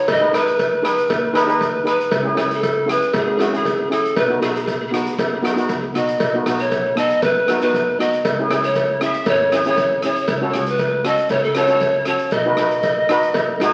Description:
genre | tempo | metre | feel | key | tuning
calypso | 118 BPM | 4/4 | straight | unclear | A4 = 436 Hz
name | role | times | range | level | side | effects
breathy bright pan flute | melody | 0.0-13.7 s | G#4 to E5 | -22 LUFS | equal | none
steel pan | accompaniment | 0.0-13.7 s | B3 to B4 | -24 LUFS | equal | none
upright bass | bass | 0.1-13.7 s | G#1 to F#2 | -33 LUFS | equal | none
street-band drum kit | drums | 0.1-13.7 s | hi-hat, kick drum, rim click | -30 LUFS | equal | none
cowbell | percussion | 0.1-13.7 s | none | -25 LUFS | equal | none
room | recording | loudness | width
moderate studio reverb, RT60 0.8 s | very old 78 rpm record, vinyl crackle | -18 LUFS | mono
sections
0.0-13.7 A section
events
none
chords
0.1 G#m; 2.1 C#m; 4.2 B; 8.2 C#m; 10.3 F#m/C#; 12.3 B

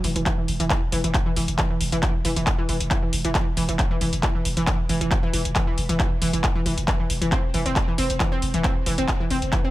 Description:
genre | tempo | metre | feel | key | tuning
driving peak-time techno | 136 BPM | 4/4 | straight | unclear | A4 = 443 Hz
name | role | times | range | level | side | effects
analog pluck | riff | 0.0-9.7 s | E3 to C4 | -26 LUFS | equal | chorus, overdrive, sidechain pumping, digital delay
growling 808-style bass | bass | 0.0-9.5 s | E1 | -27 LUFS | equal | overdrive, sidechain pumping, low-pass filter
techno drum kit | drums | 0.0-9.6 s | handclaps, hi-hat | -27 LUFS | equal | none
electronic kick drum | drums | 0.3-9.6 s | none | -24 LUFS | equal | none
room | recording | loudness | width
light reverb | none | -20 LUFS | side -16 dB against mid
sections
0.0-9.7 A section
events
none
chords
0.0 E5

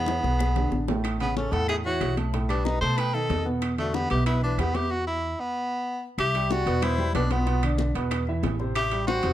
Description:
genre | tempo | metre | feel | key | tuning
Afro-Cuban jazz | 187 BPM | 4/4 | straight | E minor | A4 = 441 Hz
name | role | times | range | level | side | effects
bright tenor saxophone | melody | 0.0-9.3 s | A3 to C5 | -27 LUFS | equal | none
breathy jazz flute | second line | 0.0-9.3 s | F4 to A5 | -35 LUFS | left 7 dB | none
warm grand piano | accompaniment | 0.0-9.3 s | A2 to G5 | -30 LUFS | right 2 dB | none
upright bass | bass | 0.0-9.3 s | A1 to B2 | -28 LUFS | equal | none
bongos | percussion | 0.1-9.3 s | none | -36 LUFS | left 10 dB | none
congas | percussion | 0.1-9.3 s | none | -36 LUFS | left 3 dB | none
timbales | percussion | 0.1-9.3 s | none | -36 LUFS | right 10 dB | none
claves | percussion | 0.4-8.9 s | none | -42 LUFS | left 3 dB | none
room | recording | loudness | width
light reverb | dark, warm production | -23 LUFS | side -12 dB against mid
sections
0.0-6.2 A section; 6.2-9.3 B section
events
drum fill 0.0-1.0; stop 4.9-6.2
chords
0.0 E7; 1.0 Aadd9; 2.3 Baug7; 3.6 E5; 5.5 N.C.; 6.2 Cmaj9; 7.5 Bdim; 8.1 E5; 8.8 Am7

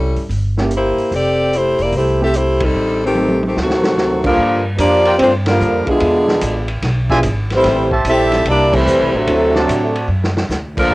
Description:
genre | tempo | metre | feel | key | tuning
jazz, big band swing | 147 BPM | 4/4 | swing 66% on 8ths | unclear | A4 = 439 Hz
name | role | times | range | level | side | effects
bright saxophone section | melody | 0.0-10.9 s | Eb3 to E5 | -16 LUFS | left 1 dB | none
upright bass | bass | 0.0-10.9 s | E1 to A2 | -20 LUFS | equal | none
vintage drum kit | drums | 0.2-10.8 s | crash cymbal, hi-hat, kick drum, ride cymbal, snare drum, toms | -22 LUFS | equal | cassette tape
warm concert grand piano | accompaniment | 0.6-10.9 s | G2 to E5 | -20 LUFS | right 2 dB | none
warm trombone section | second line | 3.6-10.9 s | A2 to E4 | -17 LUFS | right 1 dB | none
mellow trumpet section | stabs | 5.1-10.9 s | F4 to A5 | -19 LUFS | right 1 dB | none
room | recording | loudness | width
light reverb | home recording on cassette | -13 LUFS | side -19 dB against mid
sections
0.0-4.4 A section; 4.4-10.9 B section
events
band accent 2.5, 5.4, 8.7; drum fill 3.2-4.0, 10.1-10.5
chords
0.0 C7b9; 1.1 Fmaj9; 2.7 Am7b5; 3.6 D7b9; 4.4 Gm7; 6.0 E7b9; 7.6 Am7; 9.3 D7

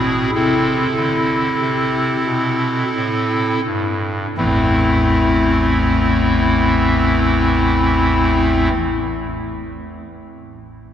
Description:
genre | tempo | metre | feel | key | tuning
classical, chorale-style piece for pipe organ | 41-50 BPM | 4/4 | rubato | A minor | A4 = 438 Hz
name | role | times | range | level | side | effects
pipe organ, clarinet reed | solo | 0.0-8.7 s | A1 to A4 | -15 LUFS | equal | none
room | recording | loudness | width
wet cathedral reverb, RT60 5.0 s | heard from further back in the room | -14 LUFS | side -10 dB against mid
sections
0.0-4.4 A section; 4.4-10.2 B section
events
slowing down 0.0-4.4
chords
0.0 Am

